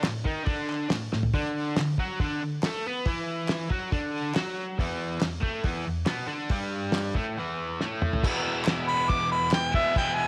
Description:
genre	garage rock duo or trio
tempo	139 BPM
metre	4/4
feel	straight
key	E mixolydian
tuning	A4 = 444 Hz
part	cranked stack guitar	riff	0.0-10.3 s	E2 to B4	-32 LUFS	equal	overdrive
part	cloth-damped thuddy drum kit	drums	0.0-10.1 s	crash cymbal, hi-hat, kick drum, snare drum, toms	-31 LUFS	equal	none
part	group handclap	percussion	0.0-9.6 s	none	-41 LUFS	equal	none
part	clear harmonica	melody	8.9-10.3 s	E5 to D6	-27 LUFS	equal	overdrive
room	light reverb, studio reverb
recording	home recording on cassette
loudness	-28 LUFS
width	mono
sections	0.0-8.2 A section; 8.2-10.3 B section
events	drum fill 1.1, 7.8-8.2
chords	0.0 A5; 1.3 D5; 4.8 E5; 8.2 E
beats	0.05 0.48 0.91 | 1.34 1.77 2.20 2.63 | 3.06 3.49 3.92 4.35 | 4.79 5.22 5.65 6.08 | 6.51 6.94 7.37 7.80 | 8.23 8.66 9.10 9.53 | 9.96

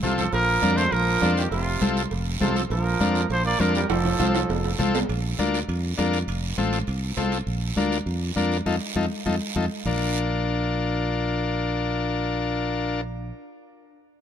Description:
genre	latin, cumbia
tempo	202 BPM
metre	4/4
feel	straight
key	Bb major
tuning	A4 = 442 Hz
part	warm trumpet	melody	0.0-4.8 s	F4 to D5	-26 LUFS	right 1 dB	none
part	growling trombone	second line	0.0-4.8 s	C3 to Bb3	-29 LUFS	right 4 dB	none
part	combo organ	accompaniment	0.0-13.0 s	C4 to C5	-27 LUFS	left 4 dB	none
part	modern bright fingered electric bass	bass	0.0-13.3 s	F1 to F2	-26 LUFS	right 1 dB	none
part	congas	percussion	0.0-9.9 s	none	-30 LUFS	left 1 dB	none
part	guiro	percussion	0.0-9.9 s	none	-35 LUFS	right 7 dB	none
part	cowbell and timbales	percussion	0.3-7.5 s	none	-33 LUFS	right 6 dB	none
room	light reverb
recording	minimal, uncompressed stereo recording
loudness	-22 LUFS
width	side -9 dB against mid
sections	0.0-5.1 A section; 5.1-9.9 B section; 9.9-12.2 C section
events	drum fill 0.0-0.3, 3.9-5.1, 9.0-9.9; band accent 8.7-9.9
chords	0.3 Bb; 1.5 F; 2.7 Bb; 3.9 F; 5.1 Bb; 6.3 F; 7.5 Bb; 8.7 F7; 9.9 Bb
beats	0.04 | 0.33 0.63 0.93 1.22 | 1.52 1.82 2.12 2.41 | 2.71 3.01 3.31 3.60 | 3.90 4.20 4.49 4.79 | 5.09 5.39 5.68 5.98 | 6.28 6.58 6.88 7.17 | 7.47 7.77 8.07 8.37 | 8.66 8.96 9.26 9.56 | 9.86 10.16 10.46 10.76 | 11.05 11.35 11.65 11.95

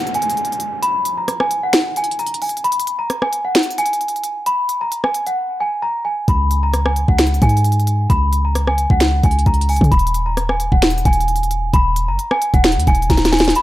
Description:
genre	hip hop, trap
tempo	132 BPM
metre	4/4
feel	half-time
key	unclear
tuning	A4 = 440 Hz
part	celesta	melody	0.0-13.6 s	Gb5 to Cb6	-19 LUFS	equal	low-pass filter
part	downlifter	sound effects	0.0-2.6 s	none	-31 LUFS	equal	none
part	trap drum kit	drums	0.1-13.6 s	finger snaps, hi-hat, kick drum, rim click, snare drum	-17 LUFS	equal	none
part	warm 808-style bass	bass	6.3-13.5 s	Eb1 to Db3	-17 LUFS	equal	none
room	digital ambience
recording	none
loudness	-14 LUFS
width	side -15 dB against mid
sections	0.0-13.6 A section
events	break 0.0-6.3; drums muted 5.4-6.3; drum fill 13.1-13.6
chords	0.0 N.C.; 6.3 Db5; 9.9 N.C.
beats	0.37 | 0.83 1.28 1.74 2.19 | 2.64 3.10 3.55 4.01 | 4.46 4.92 5.37 5.83 | 6.28 6.74 7.19 7.64 | 8.10 8.55 9.01 9.46 | 9.92 10.37 10.83 11.28 | 11.73 12.19 12.64 13.10 | 13.55

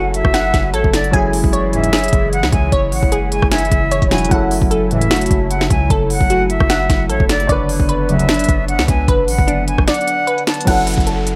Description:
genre	hip hop, trap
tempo	151 BPM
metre	4/4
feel	half-time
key	F# minor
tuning	A4 = 439 Hz
part	bright concert flute	second line	0.0-10.7 s	C#5 to A5	-24 LUFS	equal	tape echo
part	dark baby grand piano	accompaniment	0.0-11.4 s	F#3 to C#5	-26 LUFS	equal	low-pass filter
part	hollow soft pad	sustained chords	0.0-10.6 s	C#3 to E4	-28 LUFS	equal	ensemble chorus
part	glassy wavetable pluck	arpeggios	0.0-11.4 s	D4 to G#5	-23 LUFS	equal	chorus, low-pass filter, tape echo
part	hard-hitting 808-style bass	bass	0.0-11.4 s	E1 to C#2	-22 LUFS	equal	none
part	trap drum kit	drums	0.1-11.4 s	crash cymbal, hi-hat, kick drum, rim click, snare drum	-19 LUFS	equal	none
part	analog synth brass	stabs	1.7-1.9, 4.9-5.1, 8.1-8.3 s	C#2 to F#3	-20 LUFS	equal	chorus
part	downlifter	sound effects	10.7-11.4 s	none	-31 LUFS	equal	none
room	digital ambience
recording	none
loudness	-15 LUFS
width	mono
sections	0.0-10.7 A section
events	kick muted 9.9-10.7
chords	0.0 F#m7; 1.1 C#m/F#; 4.3 F#m7; 7.5 Bmadd9/F#; 10.7 F#m7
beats	0.34 0.74 | 1.13 1.53 1.93 2.33 | 2.72 3.12 3.52 3.92 | 4.31 4.71 5.11 5.50 | 5.90 6.30 6.70 7.09 | 7.49 7.89 8.29 8.68 | 9.08 9.48 9.88 10.27 | 10.67 11.07

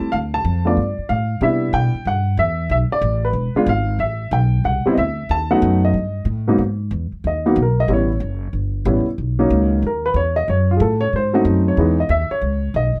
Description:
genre	jazz piano trio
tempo	185 BPM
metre	4/4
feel	swing 64% on 8ths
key	G# minor from 6.6 s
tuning	A4 = 440 Hz
part	dark baby grand piano	melody	0.0-13.0 s	G#2 to A5	-21 LUFS	equal	none
part	upright bass	bass	0.0-13.0 s	E1 to C3	-22 LUFS	equal	none
room	little or no reverb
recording	dry, close 1970s-style studio recording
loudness	-19 LUFS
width	mono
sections	0.0-6.6 A section; 6.6-13.0 B section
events	grand piano solo 6.6-13.0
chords	0.1 Dm; 0.8 Gsus2; 1.4 Cmaj7; 2.7 Asus24; 3.4 E(b9); 4.0 Am7; 5.3 B7; 6.6 G#m; 7.9 A9; 9.2 Bmaj9; 10.5 F#m; 11.1 G#7b9; 11.8 C#m7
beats	| 0.12 0.45 0.77 1.09 | 1.42 1.74 2.06 2.39 | 2.71 3.04 3.36 3.68 | 4.01 4.33 4.65 4.98 | 5.30 5.62 5.95 6.27 | 6.60 6.92 7.24 7.57 | 7.89 8.21 8.54 8.86 | 9.19 9.51 9.83 10.16 | 10.48 10.80 11.13 11.45 | 11.77 12.10 12.42 12.74

